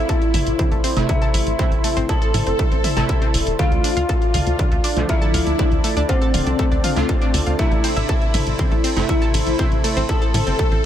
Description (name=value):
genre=melodic techno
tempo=120 BPM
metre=4/4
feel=straight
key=A minor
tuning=A4 = 441 Hz
part: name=soft supersaw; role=melody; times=0.0-10.9 s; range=C4 to A4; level=-24 LUFS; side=left 2 dB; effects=wide subtle chorus, vintage 12-bit sampler grit, sidechain pumping, tape echo
part: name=dark detuned synth bell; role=second line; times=0.0-10.9 s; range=C5 to A5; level=-31 LUFS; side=left 3 dB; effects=chorus, sidechain pumping, ping-pong delay
part: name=dark analog pad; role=sustained chords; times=0.0-10.9 s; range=A4 to D6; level=-32 LUFS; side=right 2 dB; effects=chorus, sidechain pumping
part: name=analog pluck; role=arpeggios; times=0.0-10.8 s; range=A3 to A5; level=-28 LUFS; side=equal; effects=chorus, vintage 12-bit sampler grit, sidechain pumping, ping-pong delay
part: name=synth brass stab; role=stabs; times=0.0-10.9 s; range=C3 to F4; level=-27 LUFS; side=right 3 dB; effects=chorus, sidechain pumping, ping-pong delay
part: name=tight sequencer bass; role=bass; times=0.0-10.8 s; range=D1 to A2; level=-22 LUFS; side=equal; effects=sidechain pumping
part: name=granular cloud pad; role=texture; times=0.0-10.9 s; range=D4 to A5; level=-30 LUFS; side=left 1 dB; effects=built-in reverb, sidechain pumping
part: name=electronic kick drum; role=drums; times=0.1-10.7 s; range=none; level=-20 LUFS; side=equal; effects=distortion
part: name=techno drum kit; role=drums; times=0.1-10.8 s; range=hi-hat, ride cymbal, toms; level=-27 LUFS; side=equal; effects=sidechain pumping on hats, sidechain pumping on toms, sidechain pumping on cymbals
room=little or no reverb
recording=none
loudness=-16 LUFS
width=side -10 dB against mid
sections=0.0-10.9 A section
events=none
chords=0.0 Am; 3.6 Dm; 7.6 Am